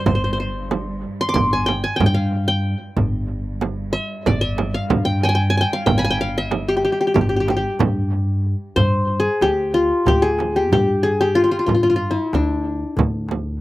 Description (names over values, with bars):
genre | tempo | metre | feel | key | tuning
Turkish makam ensemble | 186 BPM (eighths) | 9/8 | straight | G makam hicaz | A4 = 440 Hz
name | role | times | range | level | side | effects
qanun | melody | 0.0-13.6 s | D4 to D6 | -19 LUFS | left 1 dB | slapback echo
warm studio cello section | drone | 0.0-8.8 s | G2 | -32 LUFS | right 2 dB | stereo widening
upright bass | bass | 0.1-13.6 s | G1 to G2 | -22 LUFS | equal | none
darbuka | percussion | 0.1-13.4 s | none | -27 LUFS | left 1 dB | none
frame drum | percussion | 0.1-13.5 s | none | -23 LUFS | right 5 dB | none
room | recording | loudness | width
little or no reverb | recorded outdoors, with no room sound | -17 LUFS | side -17 dB against mid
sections
0.0-8.8 A section; 8.8-13.6 B section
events
none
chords
none